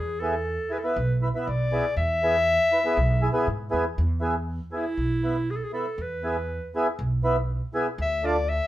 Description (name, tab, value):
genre	klezmer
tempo	120 BPM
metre	4/4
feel	straight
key	unclear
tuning	A4 = 442 Hz
part	warm clarinet	melody	0.0-8.7 s	E4 to E5	-26 LUFS	left 1 dB	none
part	upright bass	bass	0.0-8.6 s	B1 to G#2	-27 LUFS	right 1 dB	none
part	mellow accordion	accompaniment	0.2-8.4 s	B3 to B4	-27 LUFS	right 1 dB	none
room	moderate studio reverb, RT60 0.7 s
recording	band playing live in one room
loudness	-23 LUFS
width	side -14 dB against mid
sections	0.0-4.0 A section; 4.0-8.7 B section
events	clarinet solo 4.0-8.7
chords	0.0 E; 8.0 Dm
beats	0.47 0.97 1.47 | 1.97 2.47 2.98 3.48 | 3.98 4.48 4.98 5.48 | 5.98 6.49 6.99 7.49 | 7.99 8.49